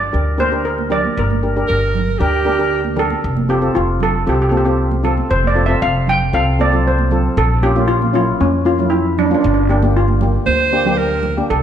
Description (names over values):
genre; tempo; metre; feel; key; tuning
calypso; 116 BPM; 4/4; straight; unclear; A4 = 440 Hz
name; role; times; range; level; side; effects
steel pan; melody; 0.0-11.6 s; Db4 to G5; -18 LUFS; equal; none
upright bass; bass; 0.0-11.6 s; F1 to F2; -18 LUFS; equal; none
steel pan; accompaniment; 0.1-11.5 s; Bb3 to Bb4; -20 LUFS; left 2 dB; none
congas; percussion; 0.4-11.4 s; none; -25 LUFS; right 8 dB; none
breathy alto saxophone; second line; 1.7-2.8, 10.5-11.4 s; G4 to C5; -18 LUFS; right 4 dB; none
room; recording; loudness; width
moderate scoring stage reverb, RT60 1.6 s; lossy compression artefacts; -13 LUFS; side -9 dB against mid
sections
0.0-7.4 A section; 7.4-11.6 B section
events
steel pan solo 0.0-7.4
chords
0.0 Gm; 3.2 F; 7.4 Bbm; 9.4 Gm7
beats
0.13 0.65 | 1.16 1.68 2.20 2.72 | 3.23 3.75 4.27 4.79 | 5.30 5.82 6.34 6.85 | 7.37 7.89 8.40 8.92 | 9.44 9.95 10.47 10.98 | 11.50